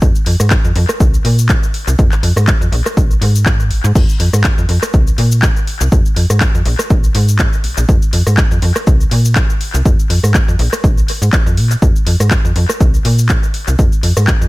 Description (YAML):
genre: filtered disco house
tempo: 122 BPM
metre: 4/4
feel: swing 55% on 16ths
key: F minor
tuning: A4 = 439 Hz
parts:
  - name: slap-like FM bass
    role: bass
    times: 0.0-14.5 s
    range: Ab1 to Bb2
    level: -13 LUFS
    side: equal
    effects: tube saturation, sidechain pumping
  - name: electronic kick drum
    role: drums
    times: 0.0-14.4 s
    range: none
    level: -13 LUFS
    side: equal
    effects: none
  - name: house drum kit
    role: drums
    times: 0.0-14.5 s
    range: crash cymbal, handclaps, hi-hat, rim click, shaker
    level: -19 LUFS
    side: left 1 dB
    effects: sidechain pumping on perc, sidechain pumping on hats, sidechain pumping on cymbals, tape echo
room: digital ambience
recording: echo-heavy mix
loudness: -10 LUFS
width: side -20 dB against mid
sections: 0.0-14.5 A section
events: none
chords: none